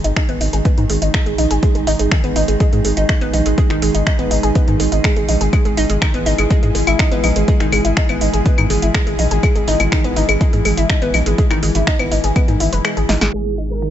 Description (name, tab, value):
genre	melodic techno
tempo	123 BPM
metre	4/4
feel	straight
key	G# minor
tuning	A4 = 440 Hz
part	evolving wavetable pad	sustained chords	0.0-13.9 s	B2 to G#4	-22 LUFS	right 1 dB	chorus, built-in reverb, sidechain pumping
part	analog pluck	arpeggios	0.0-13.9 s	D#3 to B4	-20 LUFS	equal	chorus, sidechain pumping, ping-pong delay
part	round analog bass	bass	0.0-13.9 s	F#1 to G#2	-19 LUFS	equal	sidechain pumping
part	deep house drum kit	drums	0.0-13.9 s	claves, finger snaps, hi-hat, snare drum	-22 LUFS	left 2 dB	overdrive, studio reverb
part	electronic kick drum	drums	0.2-12.5 s	none	-17 LUFS	equal	overdrive, studio reverb
part	resonant sweep polysynth	melody	13.3-13.9 s	G#4 to A#4	-25 LUFS	right 11 dB	chorus, sidechain pumping
part	downlifter	sound effects	13.7-13.9 s	none	barely audible	none	none
room	digital ambience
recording	low-pass filter, nothing above 7.9 kHz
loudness	-13 LUFS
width	side -11 dB against mid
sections	0.0-13.3 A section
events	kick drops out 12.8-13.3; drum fill 13.1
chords	0.0 G#m; 5.5 E/G#; 13.3 G#m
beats	0.16 0.65 1.14 | 1.63 2.12 2.60 3.09 | 3.58 4.07 4.55 5.04 | 5.53 6.02 6.50 6.99 | 7.48 7.97 8.46 8.94 | 9.43 9.92 10.41 10.90 | 11.38 11.87 12.36 12.85 | 13.34 13.82